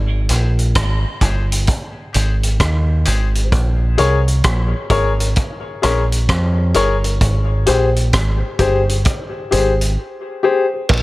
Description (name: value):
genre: dub reggae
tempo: 65 BPM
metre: 4/4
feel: swing 64% on 16ths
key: unclear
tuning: A4 = 440 Hz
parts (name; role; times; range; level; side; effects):
- deep dub picked electric bass; bass; 0.0-11.0 s; G1 to F2; -16 LUFS; equal; none
- warm upright piano; stabs; 0.3-10.8 s; G4 to Db5; -19 LUFS; left 4 dB; high-pass filter, dub echo
- vintage drum kit; drums; 0.3-11.0 s; crash cymbal, hi-hat, kick drum, rim click; -20 LUFS; equal; none
- cowbell and jawbone-type rattle; percussion; 10.9-11.0 s; none; -20 LUFS; right 5 dB; high-pass filter on perc
room: studio reverb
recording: none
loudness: -14 LUFS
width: side -19 dB against mid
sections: 0.0-10.9 A section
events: filter sweep 0.0-3.5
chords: 0.0 Abmaj7; 3.5 Bbm7; 7.2 Abmaj7